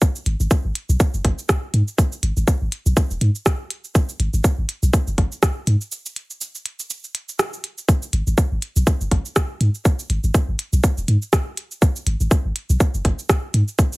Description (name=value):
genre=minimal techno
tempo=122 BPM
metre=4/4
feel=swing 57% on 16ths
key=G# minor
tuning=A4 = 440 Hz
part: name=electronic kick drum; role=drums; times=0.0-13.9 s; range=none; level=-17 LUFS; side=equal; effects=overdrive
part: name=minimal click drum kit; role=drums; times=0.0-14.0 s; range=cabasa, hi-hat, rim click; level=-24 LUFS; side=right 1 dB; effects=overdrive
part: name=punchy sub bass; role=bass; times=0.3-13.6 s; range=D#1 to G#2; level=-18 LUFS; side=equal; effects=tube saturation, sidechain pumping
room=little or no reverb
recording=heavily compressed radio sound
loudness=-18 LUFS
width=side -23 dB against mid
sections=0.0-14.0 A section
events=break 5.9-7.9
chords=none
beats=| 0.02 0.51 1.00 1.49 | 1.98 2.48 2.97 3.46 | 3.95 4.44 4.93 5.43 | 5.92 6.41 6.90 7.39 | 7.88 8.38 8.87 9.36 | 9.85 10.34 10.84 11.33 | 11.82 12.31 12.80 13.29 | 13.79